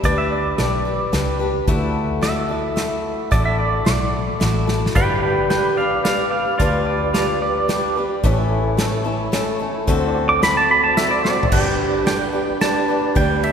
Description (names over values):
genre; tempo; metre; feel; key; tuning
honky-tonk and classic country; 110 BPM; 3/4; straight; G lydian; A4 = 440 Hz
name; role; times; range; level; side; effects
picked swing-style acoustic guitar; accompaniment; 0.0-13.5 s; A2 to B4; -22 LUFS; left 2 dB; none
vintage muted fingered electric bass; bass; 0.0-13.5 s; G1 to D2; -24 LUFS; equal; none
unplugged drum kit; drums; 0.0-13.5 s; crash cymbal, hi-hat, kick drum, ride cymbal, snare drum, toms; -23 LUFS; equal; none
pedal steel guitar; melody; 0.1-13.5 s; F4 to D6; -21 LUFS; right 2 dB; none
tonewheel organ; accompaniment; 5.0-13.5 s; D4 to D5; -26 LUFS; right 5 dB; chorus vibrato, slow rotary speaker
room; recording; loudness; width
wet church reverb, RT60 3.5 s; recorded in a church or concert hall; -16 LUFS; side -7 dB against mid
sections
0.0-11.5 A section; 11.5-13.5 B section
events
pedal steel guitar solo 0.0-11.5; drum fill 4.7, 11.2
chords
0.0 G; 1.7 Dadd9; 5.0 G; 8.2 A; 9.9 D7; 11.5 G